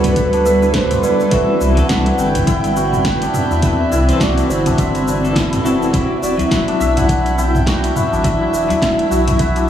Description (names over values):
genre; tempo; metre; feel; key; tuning
organic downtempo; 104 BPM; 4/4; swing 58% on 16ths; unclear; A4 = 440 Hz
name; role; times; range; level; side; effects
breathy flute-like synth lead; melody; 0.0-9.7 s; B4 to G5; -20 LUFS; equal; lush chorus, tape echo
clean electric guitar; accompaniment; 0.0-9.7 s; E3 to A4; -22 LUFS; left 3 dB; tremolo, sidechain pumping, tape echo
granular cloud pad; sustained chords; 0.0-9.7 s; G3 to E5; -21 LUFS; right 2 dB; built-in reverb, sidechain pumping
santur; arpeggios; 0.0-9.7 s; B3 to E5; -22 LUFS; left 1 dB; tape echo
warm sub bass; bass; 0.0-9.7 s; E1 to E2; -20 LUFS; equal; sidechain pumping
deep house drum kit; drums; 0.0-9.7 s; hi-hat, shaker, snare drum, toms; -22 LUFS; equal; overdrive
udu; percussion; 0.0-9.4 s; none; -24 LUFS; left 1 dB; none
electronic kick drum; drums; 0.2-9.5 s; none; -20 LUFS; equal; overdrive
room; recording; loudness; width
wet huge ambient reverb, RT60 8.0 s; dreamy mix soaked in reverb, studio reverb; -13 LUFS; side -10 dB against mid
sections
0.0-9.7 A section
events
none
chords
0.0 Gadd9; 1.3 C6; 5.9 Esus2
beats
0.17 0.74 | 1.32 1.90 2.47 3.05 | 3.63 4.21 4.78 5.36 | 5.94 6.51 7.09 7.67 | 8.24 8.82 9.40